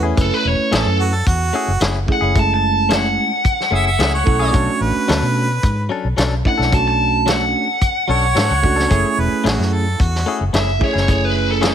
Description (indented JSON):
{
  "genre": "straight-eighth soul blues",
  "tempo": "110 BPM",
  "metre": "4/4",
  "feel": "straight",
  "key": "F# minor",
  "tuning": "A4 = 440 Hz",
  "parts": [
    { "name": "clear harmonica", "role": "second line", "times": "0.0-10.4 s", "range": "F#4 to E5", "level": "-22 LUFS", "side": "right 4 dB", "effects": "none" },
    { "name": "bell-like tine electric piano", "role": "accompaniment", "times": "0.0-11.7 s", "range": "G#3 to B4", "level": "-22 LUFS", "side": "right 4 dB", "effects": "phaser" },
    { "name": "direct-recorded clean electric guitar", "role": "stabs", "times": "0.0-11.7 s", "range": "F#3 to A4", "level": "-25 LUFS", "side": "left 6 dB", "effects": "none" },
    { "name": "vintage muted fingered electric bass", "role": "bass", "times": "0.0-11.7 s", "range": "E1 to B2", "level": "-20 LUFS", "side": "equal", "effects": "none" },
    { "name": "biting lead guitar", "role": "melody", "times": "0.2-11.7 s", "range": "A4 to A5", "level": "-19 LUFS", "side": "equal", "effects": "overdrive" },
    { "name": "warm soul drum kit", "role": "drums", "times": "0.2-11.7 s", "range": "hi-hat, kick drum, snare drum", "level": "-19 LUFS", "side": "equal", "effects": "none" }
  ],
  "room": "light reverb, small room ambience",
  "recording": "none",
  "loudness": "-14 LUFS",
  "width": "side -9 dB against mid",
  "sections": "0.0-11.7 A section",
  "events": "none",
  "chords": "0.0 F#m9; 4.5 Bm9; 8.9 F#m9"
}